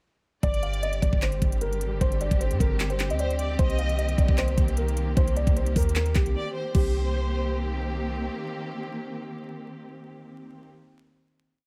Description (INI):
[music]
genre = hip hop, trap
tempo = 152 BPM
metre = 4/4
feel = half-time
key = C minor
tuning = A4 = 440 Hz
[part]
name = dark concert grand piano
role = melody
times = 0.4-7.9 s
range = G4 to F5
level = -34 LUFS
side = equal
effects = low-pass filter, delay
[part]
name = warm studio violin section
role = second line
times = 0.4-7.9 s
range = C5 to Eb5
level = -37 LUFS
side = equal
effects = delay
[part]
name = dark symphonic string section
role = sustained chords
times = 0.4-10.7 s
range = D3 to G4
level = -36 LUFS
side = equal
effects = none
[part]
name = clean 808-style bass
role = bass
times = 0.4-8.3 s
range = G1 to G2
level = -29 LUFS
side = equal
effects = none
[part]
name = trap drum kit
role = drums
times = 0.4-6.8 s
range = crash cymbal, handclaps, hi-hat, kick drum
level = -28 LUFS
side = equal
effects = none
[sound]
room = small room ambience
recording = vinyl crackle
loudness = -26 LUFS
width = mono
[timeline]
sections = 0.4-6.7 hook; 6.7-9.9 final chord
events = break 6.4-6.7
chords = 0.4 Gsus4; 3.6 Cm7